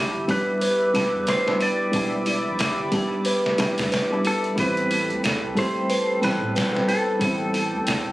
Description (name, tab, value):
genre	trip hop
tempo	91 BPM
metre	4/4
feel	swing 58% on 16ths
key	E minor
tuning	A4 = 440 Hz
part	clean lap steel guitar	melody	0.0-8.1 s	G4 to D5	-27 LUFS	equal	vintage 12-bit sampler grit, tape echo
part	felt-muted upright piano	accompaniment	0.0-8.1 s	G3 to E4	-26 LUFS	equal	harmonic tremolo, vintage 12-bit sampler grit, tape echo
part	warbly tape-like pad	sustained chords	0.0-8.1 s	G4 to D6	-30 LUFS	equal	chorus, built-in reverb, phaser
part	music box	arpeggios	0.0-8.1 s	E4 to B4	-26 LUFS	right 1 dB	tape echo
part	soft dub sub bass	bass	0.0-8.1 s	E1 to A2	-34 LUFS	equal	none
part	trip hop sampler-style drum kit	drums	0.3-8.1 s	hi-hat, kick drum, snare drum	-28 LUFS	equal	none
room	digital ambience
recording	recorded on a phone in the room, studio ambience, vinyl crackle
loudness	-20 LUFS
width	side -17 dB against mid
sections	0.0-8.1 A section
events	none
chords	0.0 Em7; 4.6 Am9